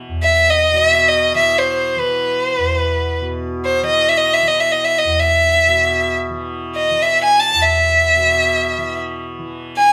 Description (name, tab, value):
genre	indian classical, Hindustani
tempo	free time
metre	none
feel	none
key	unclear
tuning	A4 = 440 Hz
part	tanpura	drone	0.0-9.9 s	E2 to E3	-26 LUFS	equal	none
part	clear violin	melody	0.2-9.9 s	B4 to A5	-16 LUFS	equal	none
room	wet studio reverb, RT60 0.9 s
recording	band playing live in one room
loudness	-15 LUFS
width	mono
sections	0.0-9.9 A section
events	none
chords	none